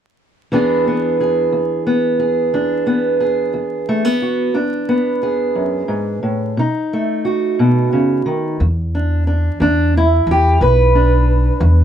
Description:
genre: acoustic country blues, solo or duo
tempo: 60 BPM (dotted quarters)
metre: 12/8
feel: straight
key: E mixolydian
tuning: A4 = 440 Hz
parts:
  - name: fingerpicked steel-string acoustic guitar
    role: melody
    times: 0.5-11.8 s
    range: E2 to B4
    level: -15 LUFS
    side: right 1 dB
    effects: none
  - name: upright bass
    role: bass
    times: 8.6-11.8 s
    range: B1 to E2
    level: -14 LUFS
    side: equal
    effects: none
room: light reverb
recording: dark, warm production, vinyl crackle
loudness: -14 LUFS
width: side -9 dB against mid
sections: 0.5-8.6 A section; 8.6-11.8 B section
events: none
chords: 0.5 E7; 6.6 B7; 8.6 E7(no3)

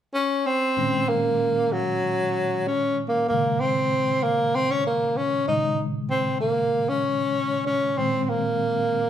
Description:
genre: jazz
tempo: 96 BPM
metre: 4/4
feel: straight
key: Eb dorian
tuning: A4 = 440 Hz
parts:
  - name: breathy tenor saxophone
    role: melody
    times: 0.1-9.1 s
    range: Gb3 to Eb4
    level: -22 LUFS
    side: equal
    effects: none
  - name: bell-like tine electric piano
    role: accompaniment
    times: 0.8-9.1 s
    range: Bb2 to Db4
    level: -28 LUFS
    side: left 1 dB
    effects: fast stereo tremolo
room: moderate large studio reverb, RT60 0.9 s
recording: band playing live in one room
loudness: -21 LUFS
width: side -10 dB against mid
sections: 0.8-9.1 A section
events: none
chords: 0.0 N.C.; 0.8 Ebm7; 5.5 Absus24

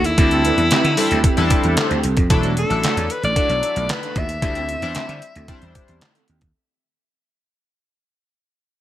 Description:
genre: early-eighties boogie funk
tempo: 113 BPM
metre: 4/4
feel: straight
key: unclear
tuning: A4 = 440 Hz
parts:
  - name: edgy alto saxophone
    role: melody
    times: 0.0-6.0 s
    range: E4 to E5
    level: -22 LUFS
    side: left 1 dB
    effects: none
  - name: mellow electric guitar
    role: riff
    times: 0.0-6.5 s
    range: A3 to A4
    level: -29 LUFS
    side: right 5 dB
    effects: analog chorus
  - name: vintage slap bass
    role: bass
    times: 0.0-6.5 s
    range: E1 to D3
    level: -22 LUFS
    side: equal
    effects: none
  - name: detuned 8-bit digital drum machine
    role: drums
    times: 0.0-6.5 s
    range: handclaps, hi-hat, kick drum, snare drum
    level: -20 LUFS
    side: equal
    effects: overdrive, gated reverb
  - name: chorused polysynth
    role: accompaniment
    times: 0.2-6.1 s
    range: F#3 to C5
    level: -23 LUFS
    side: left 2 dB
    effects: none
  - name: mellow synth brass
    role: second line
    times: 0.4-2.0 s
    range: C4 to C5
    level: -29 LUFS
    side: right 1 dB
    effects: chorus, digital delay
room: moderate plate reverb, RT60 1.7 s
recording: bright 1980s-style digital production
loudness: -16 LUFS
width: side -13 dB against mid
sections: 0.0-2.3 A section; 2.3-6.5 B section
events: fade-out 2.3-6.5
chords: 0.2 D9sus4; 2.3 E9sus4; 4.4 D9sus4

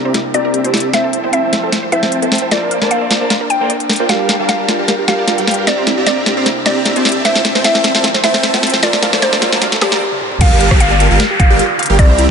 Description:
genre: future bass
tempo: 152 BPM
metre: 4/4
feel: swing 53% on 16ths, half-time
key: G dorian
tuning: A4 = 443 Hz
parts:
  - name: airy breathy pad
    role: sustained chords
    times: 0.0-10.0 s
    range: C3 to Bb4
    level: -26 LUFS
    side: left 1 dB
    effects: chorus, sidechain pumping
  - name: supersaw chords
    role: riff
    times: 0.0-12.3 s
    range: G3 to Bb5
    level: -16 LUFS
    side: right 1 dB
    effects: phaser, sidechain pumping, low-pass filter
  - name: saturated sub bass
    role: bass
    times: 0.0-12.3 s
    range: G1 to G2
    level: -23 LUFS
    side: equal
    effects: none
  - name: wide unison pluck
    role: arpeggios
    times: 0.1-12.2 s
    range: E4 to Bb5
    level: -23 LUFS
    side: right 2 dB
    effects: sidechain pumping, tape echo
  - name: trap drum kit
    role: drums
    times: 0.1-12.3 s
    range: crash cymbal, hi-hat, rim click, snare drum, toms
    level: -16 LUFS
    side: left 1 dB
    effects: none
  - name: mallet-like synth pluck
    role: melody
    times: 0.3-12.3 s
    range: G4 to G5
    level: -18 LUFS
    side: equal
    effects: chorus, sidechain pumping, tape echo
  - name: riser and downlifter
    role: sound effects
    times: 6.3-12.3 s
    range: none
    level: -21 LUFS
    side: right 1 dB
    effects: none
  - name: electronic kick drum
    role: drums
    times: 10.4-12.1 s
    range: none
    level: -10 LUFS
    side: equal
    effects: none
room: moderate shimmer reverb, RT60 6.4 s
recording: high-pass filter, nothing above 10.8 kHz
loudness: -11 LUFS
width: side -6 dB against mid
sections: 0.0-10.4 A section; 10.4-12.3 B section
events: build-up 0.0-10.4; drum fill 0.0-10.0, 10.1; filter sweep on supersaw synth 0.0-10.4; filter sweep on synth arpeggio sound 0.0-10.4; filter sweep 0.0-10.4; break 10.0-10.4; drop 10.4-12.3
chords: 0.0 C9; 0.9 Fmaj7/C; 2.5 Bbmaj7; 4.1 Gm7; 5.7 C9; 7.3 Fmaj7/C; 8.8 Bbmaj7; 10.4 Gm7

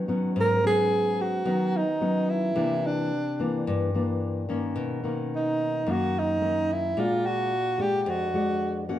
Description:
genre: bossa nova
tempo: 109 BPM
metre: 4/4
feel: straight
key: G# minor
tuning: A4 = 442 Hz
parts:
  - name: nylon-string guitar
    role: accompaniment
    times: 0.0-9.0 s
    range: E#2 to F#4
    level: -27 LUFS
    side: left 2 dB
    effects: none
  - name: breathy alto saxophone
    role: melody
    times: 0.4-8.9 s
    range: D4 to A#4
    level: -25 LUFS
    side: right 1 dB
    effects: none
room: wet large studio reverb, RT60 0.8 s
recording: band playing live in one room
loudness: -24 LUFS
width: side -12 dB against mid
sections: 0.4-9.0 A section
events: none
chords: 0.4 G#m7; 2.6 C9; 4.8 Bmaj9; 7.0 A#7b13

